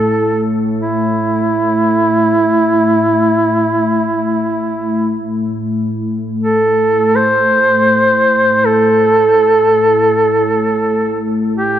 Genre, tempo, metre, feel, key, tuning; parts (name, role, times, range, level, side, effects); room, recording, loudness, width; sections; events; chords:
caucasian folk, Caucasian lament; free time; A minor; A4 = 440 Hz
warm duduk; melody; 0.0-11.8 s; E4 to C5; -12 LUFS; right 1 dB
deep dark ambient pad; drone; 0.0-11.8 s; A2; -17 LUFS; left 1 dB; chorus, built-in reverb
wet church reverb, RT60 3.6 s; dark, warm production; -11 LUFS; side -10 dB against mid
0.0-11.8 A section